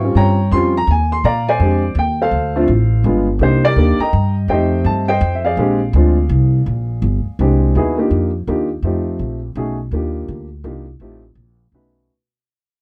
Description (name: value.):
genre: jazz piano trio.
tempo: 166 BPM.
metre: 3/4.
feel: swing 63% on 8ths.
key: Bb mixolydian.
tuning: A4 = 440 Hz.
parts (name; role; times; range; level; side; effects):
warm upright piano; melody; 0.0-12.1 s; G3 to Db6; -19 LUFS; equal; none.
upright bass; bass; 0.0-12.1 s; G1 to Bb2; -19 LUFS; equal; none.
room: little or no reverb.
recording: dry, close 1970s-style studio recording.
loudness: -16 LUFS.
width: mono.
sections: 0.0-7.7 A section; 7.7-12.1 B section.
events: fade-out 7.7-12.1.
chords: 0.0 Eb13; 1.2 Bb13; 2.3 Dm7; 3.0 G7b9; 3.4 Cm7; 4.5 F9; 5.6 Bb13; 7.7 Ebmaj9; 8.8 F9; 9.6 B13; 9.9 Ebmaj9; 10.6 Cm11; 11.0 F9; 11.7 B9.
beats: | 0.16 0.52 0.88 | 1.25 1.60 1.97 | 2.33 2.69 3.05 | 3.41 3.77 4.13 | 4.49 4.85 5.22 | 5.58 5.94 6.30 | 6.66 7.02 7.38 | 7.75 8.11 8.47 | 8.83 9.19 9.55 | 9.92 10.28 10.64 | 11.00 11.37 11.73.